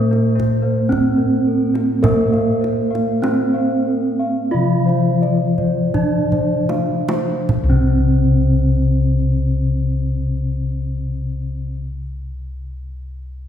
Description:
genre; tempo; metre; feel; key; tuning
Javanese gamelan; 37-59 BPM; 4/4; straight; unclear; A4 = 440 Hz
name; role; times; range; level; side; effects
gamelan-type bronze metallophone; melody; 0.0-11.8 s; Bb3-45c to F4-35c; -21 LUFS; right 3 dB; none
gamelan-type bronze metallophone; accompaniment; 0.0-11.8 s; C3 to Bb3-45c; -21 LUFS; left 3 dB; none
gamelan-type bossed gongs; arpeggios; 0.0-11.8 s; Bb4-45c to F5-35c; -27 LUFS; left 7 dB; none
gamelan-type bronze metallophone; arpeggios; 0.0-11.8 s; Bb4-45c to F5-35c; -27 LUFS; right 6 dB; none
gamelan-type bossed gongs; bass; 0.0-11.7 s; C2 to Bb4-45c; -21 LUFS; left 1 dB; none
kendang; percussion; 0.1-8.3 s; none; -24 LUFS; right 2 dB; none
room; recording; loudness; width
wet concert hall reverb, RT60 2.1 s; heard from further back in the room; -15 LUFS; side -9 dB against mid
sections
0.0-7.5 A section; 7.5-13.5 B section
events
slowing down 0.0-7.5; drum fill 5.6-7.5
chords
none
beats
0.92 | 2.04 3.24 4.53 5.95 | 7.50 9.13 10.76

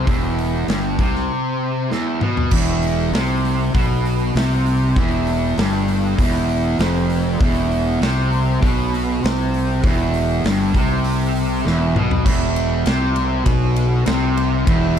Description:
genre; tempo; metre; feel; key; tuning
stoner and doom metal; 99 BPM; 4/4; straight; E phrygian; A4 = 436 Hz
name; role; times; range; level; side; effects
fuzz guitar; riff; 0.0-15.0 s; E2 to C3; -19 LUFS; equal; distortion
fuzz fingered electric bass; bass; 0.0-15.0 s; E1 to C2; -22 LUFS; equal; overdrive
big rock drum kit; drums; 0.1-14.8 s; crash cymbal, hi-hat, kick drum, ride cymbal, snare drum, toms; -22 LUFS; equal; none
room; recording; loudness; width
studio reverb; dark, warm production; -16 LUFS; side -8 dB against mid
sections
0.0-2.5 A section; 2.5-12.3 B section; 12.3-15.0 C section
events
drum fill 1.9-2.5, 11.7-12.3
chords
0.0 Em; 12.3 E5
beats
| 0.07 0.68 1.30 1.91 | 2.52 3.13 3.74 4.35 | 4.96 5.57 6.18 6.79 | 7.40 8.01 8.62 9.22 | 9.83 10.44 11.04 11.65 | 12.26 12.86 13.47 14.07 | 14.68

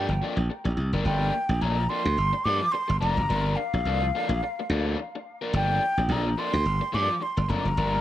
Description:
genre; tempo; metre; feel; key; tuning
funk; 107 BPM; 4/4; swing 56% on 16ths; G minor; A4 = 440 Hz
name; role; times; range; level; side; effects
breathy mellow concert flute; melody; 0.0-8.0 s; F5 to D6; -28 LUFS; equal; tape echo
raw garage guitar; accompaniment; 0.0-8.0 s; F3 to Bb4; -32 LUFS; left 3 dB; overdrive
glassy slap bass; bass; 0.0-8.0 s; F1 to G2; -25 LUFS; equal; none
room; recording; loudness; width
light reverb; none; -23 LUFS; side -13 dB against mid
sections
0.0-1.1 A section; 1.1-8.0 A section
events
none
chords
0.0 Gm9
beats
0.50 | 1.06 1.62 2.18 2.74 | 3.30 3.86 4.42 4.98 | 5.54 6.10 6.66 7.22 | 7.78

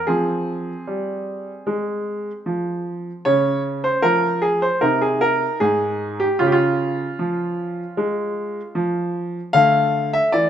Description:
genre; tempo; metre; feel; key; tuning
classical-period piano sonatina; 76 BPM; 4/4; straight; unclear; A4 = 438 Hz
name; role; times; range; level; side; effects
bright baby grand piano; solo; 0.0-10.5 s; Ab2 to F5; -18 LUFS; equal; none
room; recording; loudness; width
moderate recital hall reverb, RT60 1.7 s; close, detailed microphones; -18 LUFS; side -9 dB against mid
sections
0.0-10.5 A section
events
none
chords
0.1 Fm; 3.3 Db; 4.8 Ab/C; 6.4 Db; 9.5 D5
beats
| 0.08 0.87 1.67 2.46 | 3.25 4.04 4.82 5.61 | 6.40 7.19 7.98 8.76 | 9.55 10.34

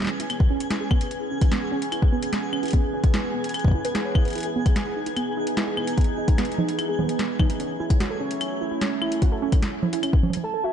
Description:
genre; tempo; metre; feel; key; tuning
IDM; 148 BPM; 4/4; straight; C# minor; A4 = 440 Hz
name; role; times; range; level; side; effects
warbly tape-like pad; sustained chords; 0.0-10.4 s; E3 to C#5; -30 LUFS; right 1 dB; chorus, built-in reverb
booming analog drum machine; drums; 0.0-10.4 s; claves, congas, hi-hat, snare drum; -28 LUFS; right 2 dB; studio reverb, dub echo
twinkling granular texture; texture; 0.0-10.4 s; G#4 to G#5; -34 LUFS; left 1 dB; built-in reverb, sidechain pumping
warbly dusty pluck; arpeggios; 0.1-10.7 s; B3 to C#5; -29 LUFS; right 3 dB; chorus, tape echo
electronic kick drum; drums; 0.4-10.2 s; none; -20 LUFS; left 1 dB; studio reverb
warbly nostalgic lead; melody; 10.4-10.7 s; E5 to A5; -26 LUFS; right 3 dB; wide subtle chorus
room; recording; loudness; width
light reverb, digital ambience; dark, warm production, nothing above 11.0 kHz; -21 LUFS; side -9 dB against mid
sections
0.0-10.7 A section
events
break 10.4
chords
0.0 C#m7; 4.4 Emaj7; 7.6 F#m7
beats
0.30 0.71 | 1.11 1.52 1.92 2.33 | 2.73 3.14 3.54 3.95 | 4.36 4.76 5.17 5.57 | 5.98 6.38 6.79 7.19 | 7.60 8.00 8.41 8.81 | 9.22 9.62 10.03 10.44

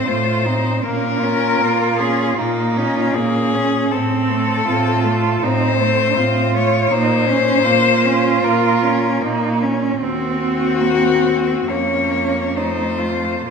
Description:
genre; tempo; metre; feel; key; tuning
classical, lyrical piece for cello ensemble; 61-83 BPM; 4/4; rubato; Bb minor; A4 = 440 Hz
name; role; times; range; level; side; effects
rich cello; melody; 0.0-13.5 s; F4 to Db5; -19 LUFS; left 6 dB; none
rich cello; second line; 0.0-13.5 s; Bb3 to F4; -21 LUFS; right 6 dB; none
rich cello; accompaniment; 0.0-13.5 s; A3 to Db4; -22 LUFS; left 1 dB; none
rich cello; bass; 0.1-13.5 s; Eb2 to Bb2; -22 LUFS; right 3 dB; none
room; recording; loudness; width
wet concert hall reverb, RT60 1.9 s; minimal, uncompressed stereo recording; -15 LUFS; side -6 dB against mid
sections
0.0-13.5 A section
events
none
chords
0.0 F/A; 0.8 Bbm; 3.9 F/A; 6.9 Bbm; 10.0 Cdim/Eb; 11.7 Bbm/F; 12.6 F7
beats
0.07 | 0.84 1.60 2.37 3.14 | 3.92 4.67 5.42 6.18 | 6.92 7.66 8.44 9.23 | 10.02 10.80 11.69 12.56 | 13.48

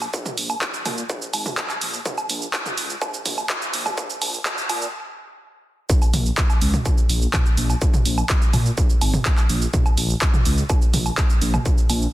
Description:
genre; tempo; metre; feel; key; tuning
melodic techno; 125 BPM; 4/4; straight; Bb minor; A4 = 440 Hz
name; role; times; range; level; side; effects
swelling detuned saw bass; bass; 0.0-12.1 s; Ab1 to Bb2; -23 LUFS; equal; sidechain pumping, high-pass filter
punchy analog drum machine; drums; 0.0-12.1 s; handclaps, hi-hat, shaker, toms, woodblock; -23 LUFS; right 1 dB; high-pass filter on perc, high-pass filter on toms, high-pass filter on hats, high-pass filter on snare, high-pass filter on room
electronic kick drum; drums; 0.1-11.8 s; none; -20 LUFS; equal; distortion, high-pass filter on kick, high-pass filter on room
room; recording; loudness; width
light reverb; dense, heavily limited modern master, high-pass filter; -18 LUFS; side -16 dB against mid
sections
0.0-5.9 A section; 5.9-12.1 B section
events
build-up 0.0-5.9; stop 4.9-5.9; drop 5.9-12.1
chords
none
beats
| 0.14 0.62 1.10 1.58 | 2.06 2.54 3.02 3.50 | 3.98 4.46 4.94 5.42 | 5.90 6.38 6.86 7.34 | 7.82 8.30 8.78 9.26 | 9.74 10.22 10.70 11.18 | 11.66

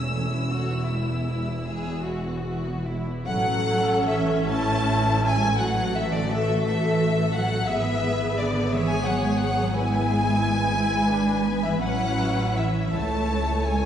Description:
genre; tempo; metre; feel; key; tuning
classical, slow romantic movement for string orchestra; 46-60 BPM (dotted quarters); 12/8; rubato; A major; A4 = 441 Hz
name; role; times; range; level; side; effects
rich chamber violin section; melody; 0.0-13.9 s; G#4 to E6; -33 LUFS; left 5 dB; none
rich chamber violin section; second line; 0.0-13.9 s; C#4 to A5; -27 LUFS; left 1 dB; none
warm studio viola section; accompaniment; 0.0-13.9 s; E3 to A4; -28 LUFS; equal; none
clear chamber double bass section; bass; 0.0-13.9 s; E1 to C#2; -28 LUFS; right 1 dB; none
warm chamber cello section; bass; 0.0-13.9 s; E2 to A3; -28 LUFS; right 2 dB; none
room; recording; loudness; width
wet concert hall reverb, RT60 2.1 s; heard from further back in the room, nothing above 10.8 kHz; -21 LUFS; side -9 dB against mid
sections
0.0-3.2 A section; 3.2-13.9 B section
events
none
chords
0.0 A/E; 0.9 E; 3.2 A; 7.7 E7/G#; 11.8 A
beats
0.89 2.04 | 3.24 4.47 5.57 6.62 | 7.67 8.70 9.72 10.78 | 11.79 12.92

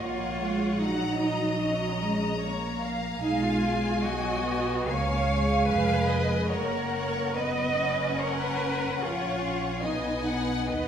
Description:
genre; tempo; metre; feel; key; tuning
classical, slow romantic movement for string orchestra; 74 BPM; 4/4; rubato; F# major; A4 = 442 Hz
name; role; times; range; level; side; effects
rich studio violin section; melody; 0.0-10.9 s; F#5 to A#5; -36 LUFS; left 6 dB; none
clear studio violin section; second line; 0.0-10.9 s; A#4 to F#5; -32 LUFS; equal; none
rich studio viola section; accompaniment; 0.0-10.9 s; F#3 to C#4; -31 LUFS; equal; none
rich studio double bass section; bass; 0.0-10.9 s; E#1 to D#2; -32 LUFS; right 1 dB; none
warm studio cello section; bass; 0.0-10.9 s; C#4 to D#5; -30 LUFS; right 2 dB; none
room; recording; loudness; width
wet recital hall reverb, RT60 1.6 s; recorded in a church or concert hall; -25 LUFS; side -8 dB against mid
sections
0.0-10.9 A section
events
none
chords
0.0 F#/A#; 3.2 G#m7/B; 4.9 C#7; 6.5 F#; 9.8 B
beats
| 0.02 0.83 1.62 2.42 | 3.22 4.02 4.87 5.68 | 6.50 7.37 8.18 9.00 | 9.82 10.70

